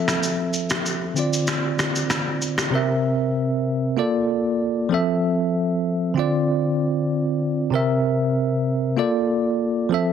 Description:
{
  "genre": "afrobeats",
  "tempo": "96 BPM",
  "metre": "4/4",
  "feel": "straight",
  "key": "unclear",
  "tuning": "A4 = 440 Hz",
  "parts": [
    { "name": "bell-like tine electric piano", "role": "accompaniment", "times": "0.0-10.1 s", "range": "C3 to E5", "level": "-20 LUFS", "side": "equal", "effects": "medium stereo tremolo, low-pass filter" },
    { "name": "electronic rim click, shaker and finger snaps", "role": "drums", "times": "0.1-2.7 s", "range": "none", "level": "-24 LUFS", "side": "equal", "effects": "overdrive" }
  ],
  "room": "light reverb",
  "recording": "dense, heavily limited modern master",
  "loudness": "-20 LUFS",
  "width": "side -8 dB against mid",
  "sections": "0.0-2.7 A section; 2.7-10.1 B section",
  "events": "filter sweep on tine electric piano 0.0-2.7",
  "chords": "0.0 Fmaj7; 1.2 Dm7; 2.7 C7; 4.0 Bbmaj7; 4.9 Fmaj7; 6.2 Dm7; 7.7 C7; 9.0 Bbmaj7",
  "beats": "| 0.23 0.85 1.48 2.10 | 2.73 3.35 3.98 4.60 | 5.23 5.85 6.48 7.10 | 7.73 8.35 8.98 9.60"
}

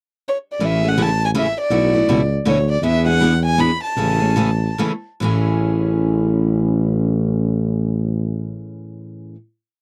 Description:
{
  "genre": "acoustic string swing (jazz manouche)",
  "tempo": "137-162 BPM",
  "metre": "3/4",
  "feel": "swing 61% on 8ths",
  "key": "A major",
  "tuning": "A4 = 441 Hz",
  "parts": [
    { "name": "dark violin", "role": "melody", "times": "0.3-4.8 s", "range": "C#5 to B5", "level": "-23 LUFS", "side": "equal", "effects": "none" },
    { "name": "picked steel-string acoustic guitar", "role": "accompaniment", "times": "0.6-9.4 s", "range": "A2 to G#4", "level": "-23 LUFS", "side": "equal", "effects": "none" },
    { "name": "mellow tuba", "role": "bass", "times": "0.6-8.6 s", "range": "A1 to E2", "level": "-21 LUFS", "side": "equal", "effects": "none" }
  ],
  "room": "little or no reverb",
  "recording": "dry, close 1970s-style studio recording",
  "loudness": "-18 LUFS",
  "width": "mono",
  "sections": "0.0-0.6 pickup bar; 0.6-5.2 A section; 5.2-7.8 final chord",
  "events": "slowing down 2.8-5.2",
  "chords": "0.0 N.C.; 0.6 Amaj7; 1.7 B7sus4; 2.8 E7; 4.0 Amaj7",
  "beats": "0.24 | 0.61 0.98 1.35 | 1.72 2.09 2.46 | 2.83 3.21 3.58 | 3.97 4.37 4.78 | 5.21 5.65 6.09 | 6.53 6.97 7.41"
}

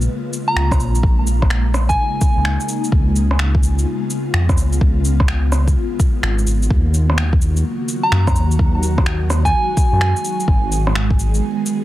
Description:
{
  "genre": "future garage",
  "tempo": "127 BPM",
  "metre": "4/4",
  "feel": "swing 65% on 16ths",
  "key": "unclear",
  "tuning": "A4 = 440 Hz",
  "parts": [
    { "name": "ethereal airy pad", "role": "sustained chords", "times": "0.0-11.8 s", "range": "Db3 to Ab4", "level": "-24 LUFS", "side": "equal", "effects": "ensemble chorus, built-in reverb, phaser, sidechain pumping" },
    { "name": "dark detuned saw bass", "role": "bass", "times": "0.0-11.4 s", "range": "Ab1 to Gb2", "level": "-16 LUFS", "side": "equal", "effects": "tube saturation, sidechain pumping" },
    { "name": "electronic shaker, finger snaps and rim click", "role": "drums", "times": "0.0-11.8 s", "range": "none", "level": "-23 LUFS", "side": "equal", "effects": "soft clipping on snare" },
    { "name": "soft synth bell", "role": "melody", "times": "0.5-2.5, 8.0-10.5 s", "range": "Ab5 to Bb5", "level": "-22 LUFS", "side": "right 1 dB", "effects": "chorus, analog delay" },
    { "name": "electronic kick drum", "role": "drums", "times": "0.7-11.2 s", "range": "none", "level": "-17 LUFS", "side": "equal", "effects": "none" }
  ],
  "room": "little or no reverb",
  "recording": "dense, heavily limited modern master, cassette tape",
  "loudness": "-14 LUFS",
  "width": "side -15 dB against mid",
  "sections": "0.0-11.8 A section",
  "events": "none",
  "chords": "0.0 Bbm7; 2.9 Db7; 6.7 Ebm; 10.5 Abm",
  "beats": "0.09 0.56 | 1.03 1.51 1.98 2.45 | 2.92 3.40 3.87 4.34 | 4.81 5.29 5.76 6.23 | 6.70 7.17 7.65 8.12 | 8.59 9.06 9.54 10.01 | 10.48 10.96 11.43"
}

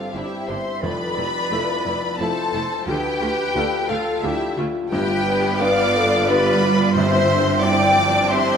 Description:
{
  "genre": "cinematic, emotional film score for orchestra",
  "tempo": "88 BPM",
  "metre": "3/4",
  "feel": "rubato",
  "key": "C major",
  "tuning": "A4 = 440 Hz",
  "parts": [
    { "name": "rich studio violin section", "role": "melody", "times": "0.0-8.6 s", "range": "E5 to D6", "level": "-25 LUFS", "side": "left 2 dB", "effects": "none" },
    { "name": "flute section", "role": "second line", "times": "0.0-8.6 s", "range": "G4 to G5", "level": "-25 LUFS", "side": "left 1 dB", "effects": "none" },
    { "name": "warm studio violin section", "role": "second line", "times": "0.0-8.6 s", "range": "E4 to D5", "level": "-24 LUFS", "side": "left 2 dB", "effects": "none" },
    { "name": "warm grand piano", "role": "accompaniment", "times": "0.0-8.6 s", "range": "F1 to C5", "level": "-26 LUFS", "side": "equal", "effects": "none" },
    { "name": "dark French horn section", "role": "sustained chords", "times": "0.0-8.6 s", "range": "F3 to C5", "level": "-28 LUFS", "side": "left 3 dB", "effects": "none" },
    { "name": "clear studio double bass section", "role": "bass", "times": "0.1-8.6 s", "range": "F1 to D2", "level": "-28 LUFS", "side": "right 5 dB", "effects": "none" },
    { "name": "rich studio cello section", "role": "bass", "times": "0.1-8.6 s", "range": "D2 to G2", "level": "-27 LUFS", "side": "right 3 dB", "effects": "none" },
    { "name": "rich studio viola section", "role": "accompaniment", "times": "0.2-8.6 s", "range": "F3 to F4", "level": "-28 LUFS", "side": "right 2 dB", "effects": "none" },
    { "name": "timpani", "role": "percussion", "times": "7.0-7.9 s", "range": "G2", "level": "-30 LUFS", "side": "right 1 dB", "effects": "none" }
  ],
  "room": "wet scoring stage reverb, RT60 1.8 s",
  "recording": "none",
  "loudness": "-17 LUFS",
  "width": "side -7 dB against mid",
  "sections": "0.0-8.6 A section",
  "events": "none",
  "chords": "0.0 Cadd9/G; 0.8 Fmaj7; 2.9 Dm; 4.9 G7; 7.0 Cadd9/G",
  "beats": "0.15 | 0.83 1.51 2.19 | 2.87 3.55 4.24 | 4.91 5.61 6.29 | 6.96 7.63 8.31"
}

